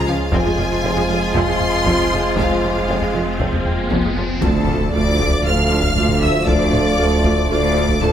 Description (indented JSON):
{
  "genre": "cinematic, hybrid orchestral and electronic film score",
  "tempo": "117 BPM",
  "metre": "4/4",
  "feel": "straight",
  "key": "unclear",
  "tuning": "A4 = 440 Hz",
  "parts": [
    { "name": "bright symphonic violin section", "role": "melody", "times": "0.0-8.1 s", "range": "E#5 to F6", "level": "-24 LUFS", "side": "left 2 dB", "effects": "none" },
    { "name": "rich symphonic violin section", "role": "second line", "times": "0.0-8.1 s", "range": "E#4 to F5", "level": "-23 LUFS", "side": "left 3 dB", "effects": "none" },
    { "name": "chorused pulse-width pad", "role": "sustained chords", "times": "0.0-8.1 s", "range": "E#3 to D5", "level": "-27 LUFS", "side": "equal", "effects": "none" },
    { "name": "warm French horn section", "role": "sustained chords", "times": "0.0-8.1 s", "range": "C4 to E#4", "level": "-27 LUFS", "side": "left 3 dB", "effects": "none" },
    { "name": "warm trombone section", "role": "sustained chords", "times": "0.0-8.1 s", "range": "E#3 to A3", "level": "-25 LUFS", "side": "right 4 dB", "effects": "none" },
    { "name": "sub bass with octave", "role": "bass", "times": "0.0-8.1 s", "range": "D1 to C#2", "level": "-28 LUFS", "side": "left 1 dB", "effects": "none" },
    { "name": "felt-muted upright piano", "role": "texture", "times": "0.0-8.1 s", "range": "Ab3 to G5", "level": "-35 LUFS", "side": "equal", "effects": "none" },
    { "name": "rich studio viola section", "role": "accompaniment", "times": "0.1-8.1 s", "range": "E#3 to F4", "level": "-27 LUFS", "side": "right 1 dB", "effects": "none" },
    { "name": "clear studio cello section", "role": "bass", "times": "0.1-8.1 s", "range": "D2 to C#3", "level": "-25 LUFS", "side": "right 1 dB", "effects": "none" },
    { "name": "clear tuba", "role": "bass", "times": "0.1-8.1 s", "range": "F1 to D2", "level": "-25 LUFS", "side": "right 4 dB", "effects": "none" },
    { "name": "rich symphonic double bass section", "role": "bass", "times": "0.1-8.1 s", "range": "F1 to D2", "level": "-24 LUFS", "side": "right 2 dB", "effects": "none" },
    { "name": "taiko ensemble", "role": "drums", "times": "0.3-8.1 s", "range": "none", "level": "-24 LUFS", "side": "left 1 dB", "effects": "none" },
    { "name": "riser and impact", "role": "sound effects", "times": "2.1-6.5 s", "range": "none", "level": "-28 LUFS", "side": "left 1 dB", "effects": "none" }
  ],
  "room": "moderate scoring stage reverb, RT60 1.6 s",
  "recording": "none",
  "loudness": "-15 LUFS",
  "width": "side -9 dB against mid",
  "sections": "0.0-4.4 A section; 4.4-8.1 B section",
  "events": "riser 2.1-4.4; impact 4.4-6.5",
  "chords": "0.3 Fm; 4.4 Dm",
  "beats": "| 0.32 0.83 1.35 1.86 | 2.37 2.88 3.40 3.91 | 4.42 4.94 5.45 5.96 | 6.47 6.99 7.50 8.01"
}